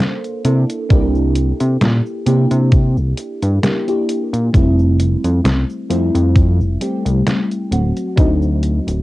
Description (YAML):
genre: vaporwave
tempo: 66 BPM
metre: 4/4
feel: swing 55% on 16ths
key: F major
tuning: A4 = 442 Hz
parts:
  - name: mellow FM electric piano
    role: accompaniment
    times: 0.0-9.0 s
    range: F#3 to C5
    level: -19 LUFS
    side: equal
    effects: phaser, analog chorus, analog delay
  - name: detuned 8-bit digital drum machine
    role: drums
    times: 0.2-9.0 s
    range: cabasa, hi-hat, snare drum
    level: -19 LUFS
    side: equal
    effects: overdrive, cassette tape
  - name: chorused synth bass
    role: bass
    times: 0.4-9.0 s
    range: D1 to C3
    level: -15 LUFS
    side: equal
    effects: none
  - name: electronic kick drum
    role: drums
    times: 0.9-8.4 s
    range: none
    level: -13 LUFS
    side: equal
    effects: cassette tape
room: light reverb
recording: home recording on cassette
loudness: -13 LUFS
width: side -18 dB against mid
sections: 0.0-9.0 A section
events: none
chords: 0.5 C9; 4.5 Fmaj9; 7.7 D7b9